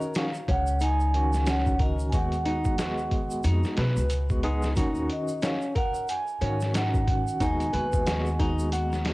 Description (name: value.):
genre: trip hop.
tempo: 91 BPM.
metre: 4/4.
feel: swing 60% on 16ths.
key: Eb minor.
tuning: A4 = 442 Hz.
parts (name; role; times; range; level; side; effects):
barky tine electric piano; accompaniment; 0.0-9.1 s; Eb3 to Ab4; -32 LUFS; equal; tremolo, cassette tape.
flamenco guitar; arpeggios; 0.0-9.0 s; Db4 to Cb5; -33 LUFS; left 1 dB; cassette tape, tape echo.
tube shaker; percussion; 0.0-9.0 s; none; -48 LUFS; right 2 dB; none.
vibraphone with soft mallets; melody; 0.2-8.7 s; Eb5 to Ab5; -31 LUFS; right 2 dB; cassette tape, dub echo.
trip hop sampler-style drum kit; drums; 0.2-9.1 s; hi-hat, kick drum, snare drum; -29 LUFS; equal; cassette tape.
upright bass; bass; 0.5-9.1 s; Db2 to Cb3; -27 LUFS; equal; none.
room: little or no reverb.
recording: home recording on cassette.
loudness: -24 LUFS.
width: side -20 dB against mid.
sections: 0.0-9.1 A section.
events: none.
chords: 0.0 Ebm7; 2.1 Abm7/Eb; 4.8 Ebm7; 7.4 Abm7/Eb.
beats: 0.15 0.81 1.47 | 2.13 2.79 3.45 4.11 | 4.77 5.42 6.08 6.74 | 7.40 8.06 8.72.